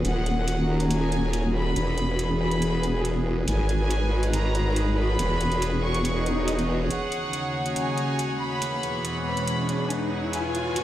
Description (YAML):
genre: heavy wobble dubstep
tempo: 140 BPM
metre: 4/4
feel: half-time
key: Eb phrygian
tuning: A4 = 439 Hz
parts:
  - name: warm studio violin section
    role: melody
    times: 0.0-10.8 s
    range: Gb5 to Eb6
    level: -32 LUFS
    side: equal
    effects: digital delay
  - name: lush unison pad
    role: sustained chords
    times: 0.0-10.8 s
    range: Eb2 to Cb5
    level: -30 LUFS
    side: equal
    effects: chorus
  - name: formant-sweep wobble bass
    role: bass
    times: 0.0-6.9 s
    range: Eb1 to Ab1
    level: -24 LUFS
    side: equal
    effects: chorus, overdrive
  - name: electronic hi-hat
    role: drums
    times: 0.0-10.8 s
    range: none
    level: -34 LUFS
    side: right 2 dB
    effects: none
  - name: rich chamber string section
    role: texture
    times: 0.0-10.8 s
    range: E3 to Bb5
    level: -32 LUFS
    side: right 2 dB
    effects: none
  - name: swell and riser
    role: sound effects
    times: 6.2-10.8 s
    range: none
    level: -32 LUFS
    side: equal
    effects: none
room: little or no reverb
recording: played on a big sound system in a bare room, stone room reverb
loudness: -23 LUFS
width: side -13 dB against mid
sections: 0.0-6.9 A section; 6.9-10.8 B section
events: swell 6.2-6.9; build-up 6.9-10.8; riser 6.9-10.8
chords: 0.0 Ebm7; 1.8 E; 3.5 Abm; 5.2 E; 6.9 Ebm7; 8.6 E; 10.3 Abm